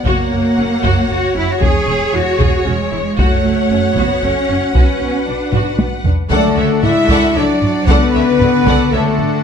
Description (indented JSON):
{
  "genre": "cinematic, epic orchestral film score",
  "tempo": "115 BPM",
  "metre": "3/4",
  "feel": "straight",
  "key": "unclear",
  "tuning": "A4 = 440 Hz",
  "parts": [
    { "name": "clear symphonic violin section", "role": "melody", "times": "0.0-9.0 s", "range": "C#5 to F#5", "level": "-24 LUFS", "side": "left 3 dB", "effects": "none" },
    { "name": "rich symphonic violin section", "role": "second line", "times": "0.0-9.4 s", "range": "A4 to E5", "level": "-25 LUFS", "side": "left 3 dB", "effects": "none" },
    { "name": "mellow French horn section", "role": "sustained chords", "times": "0.0-9.4 s", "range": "A3 to C#5", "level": "-18 LUFS", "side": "left 5 dB", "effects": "none" },
    { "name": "rich symphonic viola section", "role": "accompaniment", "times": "0.1-9.0 s", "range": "A3 to D5", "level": "-23 LUFS", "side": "right 2 dB", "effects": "none" },
    { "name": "rich symphonic cello section", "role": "bass", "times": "0.1-9.4 s", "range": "D3 to G#4", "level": "-19 LUFS", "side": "right 3 dB", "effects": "none" },
    { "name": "rich symphonic double bass section", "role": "bass", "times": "0.1-9.0 s", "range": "E1 to C#2", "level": "-20 LUFS", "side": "right 4 dB", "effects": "none" },
    { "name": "taiko ensemble", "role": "drums", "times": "0.1-9.4 s", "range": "none", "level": "-17 LUFS", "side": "left 1 dB", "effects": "none" },
    { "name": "clear trombone section", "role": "sustained chords", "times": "6.3-8.1 s", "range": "F#3 to D4", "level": "-26 LUFS", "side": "right 4 dB", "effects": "none" },
    { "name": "pipe organ, strings celeste", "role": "sustained chords", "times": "6.3-9.4 s", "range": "D4 to F#5", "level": "-25 LUFS", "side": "left 3 dB", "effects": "none" },
    { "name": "clear trumpet section", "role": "stabs", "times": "6.3-9.4 s", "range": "A4 to E5", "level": "-21 LUFS", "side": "right 1 dB", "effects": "none" }
  ],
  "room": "light reverb",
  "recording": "none",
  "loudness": "-12 LUFS",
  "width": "side -7 dB against mid",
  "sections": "0.0-6.3 A section; 6.3-9.4 B section",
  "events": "drum fill 5.5-6.3",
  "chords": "0.1 F#; 1.6 C#m/E; 3.2 F#m; 4.8 Bm; 6.3 D/C#"
}